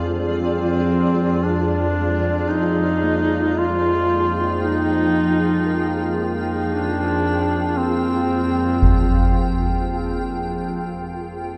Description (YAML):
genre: dark ambient drone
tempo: 57 BPM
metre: 4/4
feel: straight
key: unclear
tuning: A4 = 440 Hz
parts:
  - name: warm duduk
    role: melody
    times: 0.0-10.4 s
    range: C4 to F4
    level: -24 LUFS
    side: equal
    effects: analog delay
  - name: granular cloud pad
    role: sustained chords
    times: 0.0-11.6 s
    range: F4 to G5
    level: -27 LUFS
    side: equal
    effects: built-in reverb
  - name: organ-like drone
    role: drone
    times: 0.0-11.6 s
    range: F2 to F3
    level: -26 LUFS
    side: equal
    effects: ensemble chorus, built-in reverb
  - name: bronze singing bowl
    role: arpeggios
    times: 3.0-11.6 s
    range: Bb3 to Bb4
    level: -33 LUFS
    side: equal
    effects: analog delay
  - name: concert bass drum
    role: percussion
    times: 8.8-9.0 s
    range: none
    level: -22 LUFS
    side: equal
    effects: low-pass filter on kick
room: moderate plate reverb, RT60 2.9 s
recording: echo-heavy mix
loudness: -20 LUFS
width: mono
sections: 0.0-11.6 A section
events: fade-out 8.1-11.6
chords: 0.0 Fmadd9